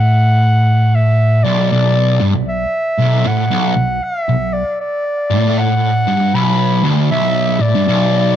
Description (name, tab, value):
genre	metal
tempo	78 BPM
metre	4/4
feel	swing 64% on 8ths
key	B minor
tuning	A4 = 440 Hz
part	mellow clarinet	melody	0.0-8.4 s	D5 to B5	-18 LUFS	equal	tape echo
part	fuzz guitar	riff	0.0-8.4 s	B1 to A2	-13 LUFS	equal	distortion
room	light reverb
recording	dark, warm production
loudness	-12 LUFS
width	side -10 dB against mid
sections	0.0-8.4 A section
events	none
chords	0.0 Bm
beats	0.17 0.95 | 1.72 2.49 3.27 4.04 | 4.81 5.58 6.35 7.12 | 7.89